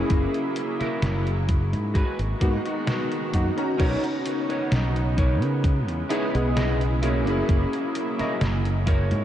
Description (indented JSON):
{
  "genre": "vaporwave",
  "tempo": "65 BPM",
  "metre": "4/4",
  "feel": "straight",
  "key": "B major",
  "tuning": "A4 = 440 Hz",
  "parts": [
    { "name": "warm electric grand piano", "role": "accompaniment", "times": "0.0-9.2 s", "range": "A#3 to A#5", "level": "-28 LUFS", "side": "equal", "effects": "ensemble chorus, diffuse ambient delay" },
    { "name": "rich chamber string section", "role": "sustained chords", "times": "0.0-9.2 s", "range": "C#3 to F#4", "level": "-32 LUFS", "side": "equal", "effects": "none" },
    { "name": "clean electric guitar", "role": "riff", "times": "0.0-9.2 s", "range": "D#4 to D#5", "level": "-31 LUFS", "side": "right 1 dB", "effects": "analog chorus, vintage 12-bit sampler grit, diffuse ambient delay" },
    { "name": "fingered electric bass", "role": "bass", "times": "0.0-9.2 s", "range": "F#1 to C#3", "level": "-24 LUFS", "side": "equal", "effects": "none" },
    { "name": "detuned 8-bit digital drum machine", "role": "drums", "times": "0.1-9.2 s", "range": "crash cymbal, hi-hat, snare drum", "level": "-33 LUFS", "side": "equal", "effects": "overdrive" },
    { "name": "electronic kick drum", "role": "drums", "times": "0.1-9.1 s", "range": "none", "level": "-22 LUFS", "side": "equal", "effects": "none" }
  ],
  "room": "moderate huge ambient reverb, RT60 7.9 s",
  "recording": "dreamy mix soaked in reverb, cassette tape",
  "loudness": "-22 LUFS",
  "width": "side -11 dB against mid",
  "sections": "0.0-3.8 A section; 3.8-9.2 B section",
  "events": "none",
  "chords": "0.0 F#7; 1.9 G#m7; 3.8 Bmaj9; 5.6 C#m7; 7.0 F#7"
}